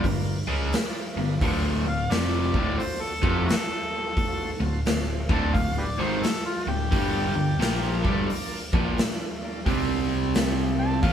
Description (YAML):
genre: blues rock power trio and southern rock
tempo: 87 BPM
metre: 4/4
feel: swing 64% on 8ths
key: unclear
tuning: A4 = 441 Hz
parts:
  - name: overdriven tonewheel organ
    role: sustained chords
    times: 0.0-11.1 s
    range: C4 to G5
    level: -38 LUFS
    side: right 2 dB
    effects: slow rotary speaker
  - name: raw garage guitar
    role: riff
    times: 0.0-11.1 s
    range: D2 to C#4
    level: -26 LUFS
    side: equal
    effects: overdrive
  - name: overdriven picked electric bass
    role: bass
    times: 0.0-11.1 s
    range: D1 to C#2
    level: -30 LUFS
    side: equal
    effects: none
  - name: raw garage drum kit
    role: drums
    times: 0.0-11.1 s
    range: hi-hat, kick drum, snare drum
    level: -27 LUFS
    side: equal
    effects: none
  - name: overdriven harmonica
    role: melody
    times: 1.9-11.1 s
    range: E4 to A5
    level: -30 LUFS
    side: left 1 dB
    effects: none
room: moderate stone room reverb, RT60 1.1 s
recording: band playing live in one room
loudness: -23 LUFS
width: side -9 dB against mid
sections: 0.0-11.1 A section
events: harmonica solo 0.0-11.1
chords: 0.0 G7#9; 1.4 D7#9; 6.9 G7#9; 9.7 C5